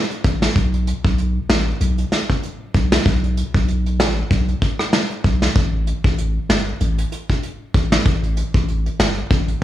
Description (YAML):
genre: dancehall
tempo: 96 BPM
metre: 4/4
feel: swing 56% on 16ths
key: unclear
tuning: A4 = 439 Hz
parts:
  - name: vintage brush drum kit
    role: drums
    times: 0.1-9.6 s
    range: hi-hat, kick drum, rim click, snare drum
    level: -19 LUFS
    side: equal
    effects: none
  - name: punchy sub bass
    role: bass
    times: 0.2-9.5 s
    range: G1 to B1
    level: -19 LUFS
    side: equal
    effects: none
room: light reverb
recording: studio ambience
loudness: -16 LUFS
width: side -13 dB against mid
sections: 0.0-5.6 A section; 5.6-9.6 B section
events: none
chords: none